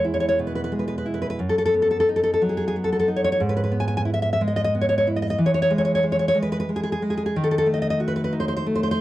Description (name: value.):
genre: romantic piece for solo classical guitar.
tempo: 60 BPM (dotted quarters).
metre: 6/8.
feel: rubato.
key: E major.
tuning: A4 = 440 Hz.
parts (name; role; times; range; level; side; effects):
nylon-string guitar; solo; 0.0-9.0 s; E2 to G#5; -20 LUFS; equal; none.
room: light reverb.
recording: dark, warm production.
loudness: -20 LUFS.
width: side -15 dB against mid.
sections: 0.0-9.0 A section.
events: none.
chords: 0.0 E; 1.4 B/F#; 3.4 E/G#; 5.4 E; 7.4 D#dim.